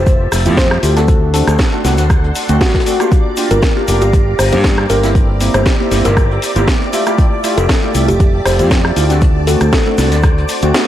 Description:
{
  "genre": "deep house",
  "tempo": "118 BPM",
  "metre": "4/4",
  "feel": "swing 54% on 16ths",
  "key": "unclear",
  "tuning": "A4 = 441 Hz",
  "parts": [
    { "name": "soft round pluck", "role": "melody", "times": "0.0-3.0 s", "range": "F#4 to C5", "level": "-20 LUFS", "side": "left 2 dB", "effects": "chorus, cassette tape, tape echo" },
    { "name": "soft string machine", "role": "sustained chords", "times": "0.0-10.9 s", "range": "F#4 to C6", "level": "-25 LUFS", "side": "equal", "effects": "phaser, ensemble chorus, sidechain pumping" },
    { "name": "modern bright fingered electric bass", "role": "bass", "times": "0.0-10.7 s", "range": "F1 to G2", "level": "-14 LUFS", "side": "equal", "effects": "tube saturation, sidechain pumping" },
    { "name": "electronic kick drum", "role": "drums", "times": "0.1-10.3 s", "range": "none", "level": "-13 LUFS", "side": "equal", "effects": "none" },
    { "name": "house drum kit", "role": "drums", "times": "0.1-10.9 s", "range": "hi-hat, rim click, snare drum", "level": "-19 LUFS", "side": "equal", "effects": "none" },
    { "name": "vintage brush drum kit", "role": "drums", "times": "0.1-10.9 s", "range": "hi-hat, snare drum", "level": "-29 LUFS", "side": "left 1 dB", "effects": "none" },
    { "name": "egg shaker", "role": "percussion", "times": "0.1-10.9 s", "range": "none", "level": "-30 LUFS", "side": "left 3 dB", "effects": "none" },
    { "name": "deep mellow chord stab", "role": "stabs", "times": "0.5-10.9 s", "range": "A3 to G4", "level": "-18 LUFS", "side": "equal", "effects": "chorus, cassette tape, sidechain pumping, diffuse ambient delay" },
    { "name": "string machine, violins", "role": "texture", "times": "3.1-10.9 s", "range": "D5 to D6", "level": "-26 LUFS", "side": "right 1 dB", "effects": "ensemble chorus, sidechain pumping" },
    { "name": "kalimba", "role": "melody", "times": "3.5-9.9 s", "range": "G4 to C5", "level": "-20 LUFS", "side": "equal", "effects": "tape echo" }
  ],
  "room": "light reverb, studio reverb",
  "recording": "none",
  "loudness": "-10 LUFS",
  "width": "side -12 dB against mid",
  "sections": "0.0-10.9 A section",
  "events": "none",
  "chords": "0.0 Fmaj9; 1.1 D7; 3.1 Gm7; 5.2 C7/G; 6.9 Fmaj9; 9.2 D7",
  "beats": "0.07 0.57 | 1.08 1.59 2.10 2.61 | 3.12 3.62 4.13 4.64 | 5.15 5.66 6.17 6.68 | 7.18 7.69 8.20 8.71 | 9.22 9.73 10.24 10.74"
}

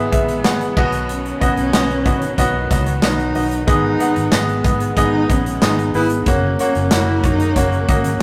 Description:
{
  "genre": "piano-driven pop",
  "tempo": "93 BPM",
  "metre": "4/4",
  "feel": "straight",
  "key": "G# minor",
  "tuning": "A4 = 439 Hz",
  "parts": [
    { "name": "dark cello", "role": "melody", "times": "0.0-8.2 s", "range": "B3 to E4", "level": "-25 LUFS", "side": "equal", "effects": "none" },
    { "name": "bright grand piano", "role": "accompaniment", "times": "0.0-8.2 s", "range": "G#2 to F#5", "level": "-22 LUFS", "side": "equal", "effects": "none" },
    { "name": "warm studio string section", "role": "sustained chords", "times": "0.0-8.2 s", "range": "C#3 to B3", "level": "-29 LUFS", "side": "equal", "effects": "none" },
    { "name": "vintage muted fingered electric bass", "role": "bass", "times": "0.0-8.2 s", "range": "F#1 to B2", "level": "-25 LUFS", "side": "equal", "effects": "none" },
    { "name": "modern studio drum kit", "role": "drums", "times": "0.1-8.2 s", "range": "crash cymbal, handclaps, hi-hat, kick drum, snare drum", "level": "-22 LUFS", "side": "equal", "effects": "none" }
  ],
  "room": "moderate stone room reverb, RT60 1.2 s",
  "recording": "rough rehearsal-room recording, tube saturation",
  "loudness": "-17 LUFS",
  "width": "mono",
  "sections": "0.0-8.2 A section",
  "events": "none",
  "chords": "0.0 E/G#; 0.8 B; 3.7 G#m; 6.3 F#",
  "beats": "0.45 | 1.09 1.74 2.38 3.03 | 3.68 4.32 4.97 5.62 | 6.26 6.91 7.55 8.20"
}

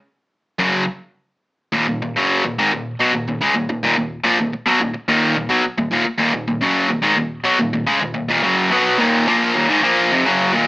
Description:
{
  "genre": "rock",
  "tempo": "107 BPM",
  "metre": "4/4",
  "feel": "straight",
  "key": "Eb minor",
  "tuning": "A4 = 440 Hz",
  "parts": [
    { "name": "cranked stack guitar", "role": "solo", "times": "0.6-10.7 s", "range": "Eb2 to Cb4", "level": "-15 LUFS", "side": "equal", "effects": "overdrive" }
  ],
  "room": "moderate studio reverb, RT60 0.5 s",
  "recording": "small speaker sound",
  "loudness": "-15 LUFS",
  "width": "side -20 dB against mid",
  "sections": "0.0-1.7 A section; 1.7-10.7 B section",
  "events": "none",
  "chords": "0.0 N.C.; 0.6 Gb5; 1.7 Ebm",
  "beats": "0.04 0.60 1.17 | 1.73 2.29 2.84 3.40 | 3.96 4.52 5.07 5.63 | 6.19 6.75 7.31 7.87 | 8.43 8.99 9.55 10.11"
}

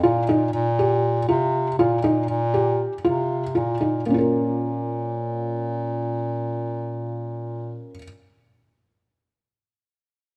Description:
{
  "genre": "contemporary instrumental, chamber music in an uneven meter",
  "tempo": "236 BPM (eighths)",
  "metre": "7/8",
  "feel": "straight",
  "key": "Bb dorian",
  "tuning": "A4 = 440 Hz",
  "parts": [
    { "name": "felt-muted upright piano", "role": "arpeggios", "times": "0.0-8.0 s", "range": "Bb3 to Bb4", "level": "-26 LUFS", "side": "equal", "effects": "none" },
    { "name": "clear bass clarinet", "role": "bass", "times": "0.0-7.9 s", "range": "Bb2 to C3", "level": "-27 LUFS", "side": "equal", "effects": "none" }
  ],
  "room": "light reverb",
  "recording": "none",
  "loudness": "-23 LUFS",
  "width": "mono",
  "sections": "0.0-4.1 A section; 4.1-7.6 B section",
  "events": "none",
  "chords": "0.0 Bb5; 0.5 F5/Bb; 4.1 Bbm",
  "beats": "0.03 0.28 | 0.53 0.78 1.03 1.28 1.53 1.79 2.04 | 2.29 2.54 2.79 3.04 3.30 3.55 3.81 | 4.06 4.31 4.57 4.82 5.08 5.33 5.59 | 5.84 6.10 6.35 6.61 6.86 7.12 7.37"
}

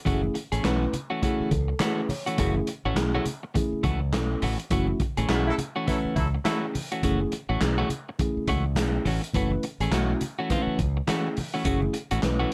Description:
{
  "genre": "funk",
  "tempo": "104 BPM",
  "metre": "4/4",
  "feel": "swing 60% on 16ths",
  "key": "F# minor",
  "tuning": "A4 = 440 Hz",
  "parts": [
    { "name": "clean electric guitar", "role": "accompaniment", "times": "0.1-12.5 s", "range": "E3 to G#4", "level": "-32 LUFS", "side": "equal", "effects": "none" },
    { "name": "mellow tine electric piano", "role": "stabs", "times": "0.1-12.5 s", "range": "A3 to C#5", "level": "-32 LUFS", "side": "equal", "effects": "none" },
    { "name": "modern bright fingered electric bass", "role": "bass", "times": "0.1-12.4 s", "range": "F#1 to C#2", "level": "-30 LUFS", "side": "equal", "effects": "none" },
    { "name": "vintage drum kit", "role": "drums", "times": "0.1-12.5 s", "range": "handclaps, hi-hat, kick drum, snare drum", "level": "-32 LUFS", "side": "equal", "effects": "none" },
    { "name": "congas", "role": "percussion", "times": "0.1-12.4 s", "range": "none", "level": "-37 LUFS", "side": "equal", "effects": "none" },
    { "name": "warm horn section", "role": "second line", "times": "5.5-6.6 s", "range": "F#3 to A4", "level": "-33 LUFS", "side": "equal", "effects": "none" }
  ],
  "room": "light reverb",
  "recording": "none",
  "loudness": "-26 LUFS",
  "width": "mono",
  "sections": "0.0-12.5 A section",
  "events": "tine electric piano fill 1.2-2.4; band accent 4.7-7.0",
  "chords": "0.0 F#m7",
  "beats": "| 0.07 0.65 1.23 1.81 | 2.39 2.97 3.55 4.13 | 4.71 5.29 5.87 6.45 | 7.03 7.61 8.19 8.77 | 9.35 9.92 10.50 11.08 | 11.66 12.23"
}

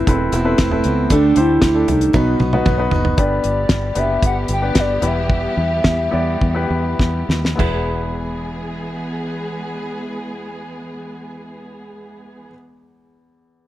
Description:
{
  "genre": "piano-driven pop",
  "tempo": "98-116 BPM",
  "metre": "4/4",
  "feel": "straight",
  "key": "E minor",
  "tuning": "A4 = 440 Hz",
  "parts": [
    { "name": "hollow clarinet-like synth lead", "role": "melody", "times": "0.0-7.0 s", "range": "A3 to G5", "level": "-19 LUFS", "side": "right 1 dB", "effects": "chorus" },
    { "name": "clear baby grand piano", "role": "accompaniment", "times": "0.0-13.7 s", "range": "E2 to D5", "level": "-23 LUFS", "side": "left 3 dB", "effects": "none" },
    { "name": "picked steel-string acoustic guitar", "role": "riff", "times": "0.0-3.2 s", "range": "B2 to G4", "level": "-24 LUFS", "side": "right 6 dB", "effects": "none" },
    { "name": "fingered electric bass", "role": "bass", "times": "0.0-12.5 s", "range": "E1 to E2", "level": "-21 LUFS", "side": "equal", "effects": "none" },
    { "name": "damped 70s drum kit", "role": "drums", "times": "0.1-7.7 s", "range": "china cymbal, hi-hat, kick drum, snare drum, toms", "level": "-18 LUFS", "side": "equal", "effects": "none" },
    { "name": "warm symphonic string section", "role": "sustained chords", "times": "3.2-12.5 s", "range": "D3 to G#4", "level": "-28 LUFS", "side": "equal", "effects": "none" }
  ],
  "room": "light reverb, studio ambience",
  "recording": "none",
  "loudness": "-15 LUFS",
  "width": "side -14 dB against mid",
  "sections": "0.0-3.2 A section; 3.2-7.6 B section; 7.6-12.5 C section",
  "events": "drum fill 2.1-3.2, 7.0-7.6; slowing down 3.2-7.6",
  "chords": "0.0 Amadd9/E; 1.1 Dsus4; 2.1 B; 3.2 G; 5.0 Em; 7.6 E",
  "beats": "0.07 0.59 | 1.11 1.63 2.14 2.66 | 3.18 3.70 4.22 4.75 | 5.29 5.84 6.41 6.99 | 7.59 8.20 8.81 9.42 | 10.03 10.64 11.24 11.86"
}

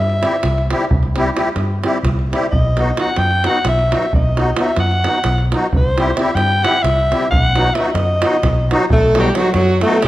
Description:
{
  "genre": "balkan folk, Balkan wedding band",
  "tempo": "262 BPM (eighths)",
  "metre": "7/8",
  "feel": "straight",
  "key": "B phrygian dominant",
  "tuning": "A4 = 440 Hz",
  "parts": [
    { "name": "raspy alto saxophone", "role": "melody", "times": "0.0-10.1 s", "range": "F#3 to G5", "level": "-18 LUFS", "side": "equal", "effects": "none" },
    { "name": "vintage muted fingered electric bass", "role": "bass", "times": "0.0-10.1 s", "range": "B1 to G2", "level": "-18 LUFS", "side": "equal", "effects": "none" },
    { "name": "davul", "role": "percussion", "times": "0.1-10.1 s", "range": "none", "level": "-20 LUFS", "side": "right 2 dB", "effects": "none" },
    { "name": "musette accordion", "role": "accompaniment", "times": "0.2-10.0 s", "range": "F#3 to G4", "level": "-20 LUFS", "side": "left 1 dB", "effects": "none" },
    { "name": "warm violin", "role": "second line", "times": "8.9-10.1 s", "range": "F#4 to A4", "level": "-18 LUFS", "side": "right 3 dB", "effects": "none" }
  ],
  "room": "moderate recital hall reverb, RT60 1.5 s",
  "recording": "none",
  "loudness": "-13 LUFS",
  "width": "side -15 dB against mid",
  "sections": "0.0-8.9 A section; 8.9-10.1 B section",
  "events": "alto saxophone solo 0.0-8.9",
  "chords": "0.0 C; 2.5 B; 5.7 C; 7.3 B",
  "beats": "0.00 0.23 0.46 0.69 | 0.91 1.14 1.37 1.60 1.83 2.06 2.29 | 2.52 2.75 2.98 3.21 3.44 3.66 3.89 | 4.12 4.35 4.58 4.81 5.04 5.27 5.50 | 5.72 5.95 6.18 6.41 6.64 6.87 7.09 | 7.32 7.55 7.78 8.01 8.23 8.46 8.69 | 8.92 9.14 9.37 9.60 9.82 10.05"
}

